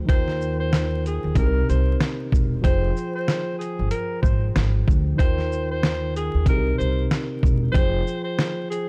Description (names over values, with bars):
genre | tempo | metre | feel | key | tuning
hip hop, boom-bap hip-hop | 94 BPM | 4/4 | swing 59% on 16ths | F minor | A4 = 440 Hz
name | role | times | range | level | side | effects
mellow tine electric piano | accompaniment | 0.0-8.9 s | C3 to G5 | -31 LUFS | equal | cassette tape, high-pass filter, low-pass filter
upright bass | bass | 0.0-8.0 s | E1 to Eb2 | -26 LUFS | equal | none
breathy tenor saxophone | melody | 0.1-8.9 s | Ab4 to C5 | -31 LUFS | equal | high-pass filter, low-pass filter, tape echo
dusty soul sampler-style drum kit | drums | 0.1-8.9 s | hi-hat, kick drum, shaker, snare drum | -24 LUFS | equal | none
room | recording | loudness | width
little or no reverb | dark, warm production, vinyl crackle | -22 LUFS | mono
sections
0.0-8.9 A section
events
none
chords
0.1 Ebadd9; 1.4 Cm7; 2.6 Fmadd9; 5.2 Ebadd9; 6.5 Cm7; 7.7 Fmadd9